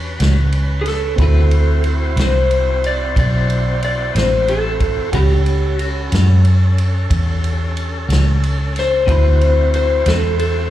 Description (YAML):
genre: slow blues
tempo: 61 BPM (dotted quarters)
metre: 12/8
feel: straight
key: unclear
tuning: A4 = 440 Hz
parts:
  - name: dark baby grand piano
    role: accompaniment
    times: 0.0-10.7 s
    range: C4 to B5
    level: -30 LUFS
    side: right 4 dB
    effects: plate reverb, slapback echo
  - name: tonewheel organ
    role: sustained chords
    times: 0.0-10.7 s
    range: C4 to C5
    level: -26 LUFS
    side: left 1 dB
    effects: slow rotary speaker, overdrive
  - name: vintage muted fingered electric bass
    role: bass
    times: 0.0-10.7 s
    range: A1 to F#2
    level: -15 LUFS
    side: equal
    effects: none
  - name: clean electric guitar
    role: accompaniment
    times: 0.2-10.3 s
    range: A2 to B4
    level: -26 LUFS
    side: left 6 dB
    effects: tremolo, plate reverb, slapback echo
  - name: vintage drum kit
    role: drums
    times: 0.2-10.5 s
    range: kick drum, ride cymbal, snare drum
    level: -23 LUFS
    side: equal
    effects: none
  - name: electric slide guitar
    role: melody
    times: 0.8-10.7 s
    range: G4 to D5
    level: -18 LUFS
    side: left 2 dB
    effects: slapback echo
room: light reverb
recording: live gig heard through the venue's PA, club reverb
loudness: -13 LUFS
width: side -13 dB against mid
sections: 0.0-10.7 A section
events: none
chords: 0.0 A13; 1.2 D13; 5.1 A13; 9.1 D13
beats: 0.21 | 1.19 2.18 3.17 4.15 | 5.14 6.12 7.11 8.09 | 9.08 10.06